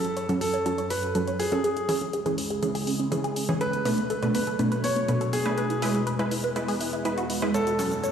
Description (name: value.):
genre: progressive house.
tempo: 122 BPM.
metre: 4/4.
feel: straight.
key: F# minor.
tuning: A4 = 440 Hz.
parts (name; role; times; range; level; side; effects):
warm grand piano; melody; 0.0-8.1 s; G#4 to C#5; -30 LUFS; right 1 dB; digital delay.
evolving wavetable pad; sustained chords; 0.0-8.1 s; C#2 to C#5; -32 LUFS; equal; phaser, built-in reverb.
tight sequenced synth; arpeggios; 0.0-8.1 s; B3 to C#5; -32 LUFS; equal; chorus, phaser, digital delay.
wide unison pluck; stabs; 0.0-7.9 s; B2 to B4; -28 LUFS; right 1 dB; digital delay.
electronic hi-hat and shaker; drums; 0.0-8.1 s; none; -37 LUFS; left 1 dB; none.
riser; sound effects; 8.0-8.1 s; none; -53 LUFS; left 1 dB; none.
room: moderate lush hall reverb, RT60 2.1 s.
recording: played on a big sound system in a bare room, large studio reverb.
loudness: -24 LUFS.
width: side -8 dB against mid.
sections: 0.0-8.1 A section.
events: build-up 0.0-8.1; filter sweep on synth arpeggio sound 0.0-8.1; filter sweep on synth pluck 0.0-8.1.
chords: 0.0 F#m; 1.6 C#m; 3.6 Bm7; 5.6 E; 7.5 F#m.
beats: 0.17 0.66 1.15 | 1.64 2.13 2.63 3.12 | 3.61 4.10 4.59 5.08 | 5.58 6.07 6.56 7.05 | 7.54 8.04.